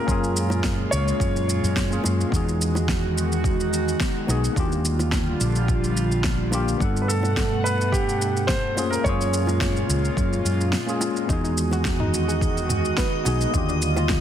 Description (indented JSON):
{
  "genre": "sunset chillout",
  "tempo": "107 BPM",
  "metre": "4/4",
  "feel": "swing 53% on 16ths",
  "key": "unclear",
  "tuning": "A4 = 441 Hz",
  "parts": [
    { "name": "warm grand piano", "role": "melody", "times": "0.0-2.0, 7.0-10.7 s", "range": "G4 to C#5", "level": "-27 LUFS", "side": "right 1 dB", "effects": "ping-pong delay" },
    { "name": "tine electric piano", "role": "accompaniment", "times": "0.0-14.2 s", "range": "D3 to F#5", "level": "-29 LUFS", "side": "moving between left 5 dB and right 3 dB", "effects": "auto-pan, tape echo" },
    { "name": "airy breathy pad", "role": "sustained chords", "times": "0.0-14.2 s", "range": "A#2 to F#5", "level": "-28 LUFS", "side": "right 1 dB", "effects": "chorus" },
    { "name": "mellow fretless electric bass", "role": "bass", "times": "0.1-14.2 s", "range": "A#1 to G2", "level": "-24 LUFS", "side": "equal", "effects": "none" },
    { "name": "deep house drum kit", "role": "drums", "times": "0.1-14.2 s", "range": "shaker, snare drum, toms", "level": "-29 LUFS", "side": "equal", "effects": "studio reverb" },
    { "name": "electronic kick drum", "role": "drums", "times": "0.1-14.2 s", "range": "none", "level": "-26 LUFS", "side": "equal", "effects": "studio reverb" },
    { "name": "bongos", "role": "percussion", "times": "0.5-14.1 s", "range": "none", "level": "-33 LUFS", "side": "right 1 dB", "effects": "none" },
    { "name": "soft round pluck", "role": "arpeggios", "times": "11.3-14.1 s", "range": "D4 to B4", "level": "-32 LUFS", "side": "left 3 dB", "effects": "chorus, tape echo" },
    { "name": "drifting glass-harmonics texture", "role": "texture", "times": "11.8-14.2 s", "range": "D#5 to D#6", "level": "-30 LUFS", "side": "right 2 dB", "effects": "chorus, built-in reverb" }
  ],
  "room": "light reverb",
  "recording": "dense, heavily limited modern master",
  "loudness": "-20 LUFS",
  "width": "side -10 dB against mid",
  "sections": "0.0-14.2 A section",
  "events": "none",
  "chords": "0.0 F#maj9; 2.3 Emaj9; 4.6 D#maj9; 6.8 Gmaj9; 8.8 F#maj9; 11.3 Emaj9; 13.5 D#maj9",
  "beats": "| 0.08 0.64 1.20 1.76 | 2.32 2.88 3.44 4.00 | 4.57 5.12 5.69 6.25 | 6.81 7.37 7.93 8.49 | 9.05 9.61 10.17 10.73 | 11.29 11.85 12.41 12.98 | 13.54 14.10"
}